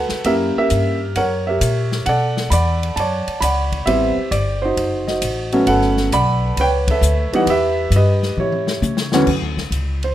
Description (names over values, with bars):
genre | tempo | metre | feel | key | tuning
jazz piano trio | 133 BPM | 4/4 | swing 68% on 8ths | B minor | A4 = 440 Hz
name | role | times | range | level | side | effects
warm grand piano | melody | 0.0-10.1 s | D2 to B5 | -18 LUFS | right 1 dB | none
upright bass | bass | 0.0-10.1 s | F#1 to C#3 | -20 LUFS | left 1 dB | none
open jazz drum kit | drums | 0.1-10.1 s | crash cymbal, hi-hat, kick drum, ride cymbal, snare drum, toms | -26 LUFS | left 2 dB | none
room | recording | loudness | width
little or no reverb | close, detailed microphones | -15 LUFS | side -12 dB against mid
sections
0.0-9.3 A section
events
band accent 6.8; drum fill 8.4-9.3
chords
0.2 F#7b9; 2.1 Bm9; 3.9 Am7; 4.8 F#dim7; 5.7 Gmaj9#11; 7.5 Emmaj7; 8.4 A7; 9.3 D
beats
| 0.25 0.70 1.16 1.61 | 2.06 2.51 2.96 3.42 | 3.87 4.32 4.77 5.22 | 5.67 6.12 6.57 7.02 | 7.47 7.92 8.37 8.82 | 9.27 9.72